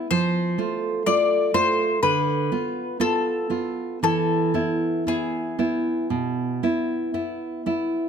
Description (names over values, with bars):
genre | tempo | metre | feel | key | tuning
romantic duo for mandolin and classical guitar | 57-63 BPM | 4/4 | rubato | unclear | A4 = 441 Hz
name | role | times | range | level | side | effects
mandolin | melody | 0.0-7.6 s | G#4 to D5 | -24 LUFS | left 5 dB | none
nylon-string guitar | accompaniment | 0.0-8.1 s | B2 to F4 | -23 LUFS | right 3 dB | none
room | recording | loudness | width
light reverb | close, detailed microphones | -21 LUFS | side -7 dB against mid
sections
0.0-8.1 A section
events
none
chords
0.1 F; 2.0 Bm7b5/D; 4.0 E